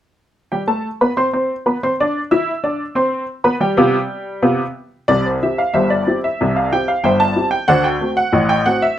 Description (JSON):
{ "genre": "ragtime piano", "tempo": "92 BPM", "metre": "2/4", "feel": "straight", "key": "C major", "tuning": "A4 = 439 Hz", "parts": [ { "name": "honky-tonk upright piano", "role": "solo", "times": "0.5-9.0 s", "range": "G1 to E6", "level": "-15 LUFS", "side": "equal", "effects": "none" } ], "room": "moderate small room reverb, RT60 0.6 s", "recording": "none", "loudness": "-15 LUFS", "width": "side -11 dB against mid", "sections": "0.0-5.1 A section; 5.1-9.0 B section", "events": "none", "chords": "0.0 C; 2.5 G7; 5.1 C; 7.7 D7", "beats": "0.53 | 1.18 1.83 | 2.48 3.13 | 3.78 4.43 | 5.09 5.74 | 6.40 7.04 | 7.69 8.35" }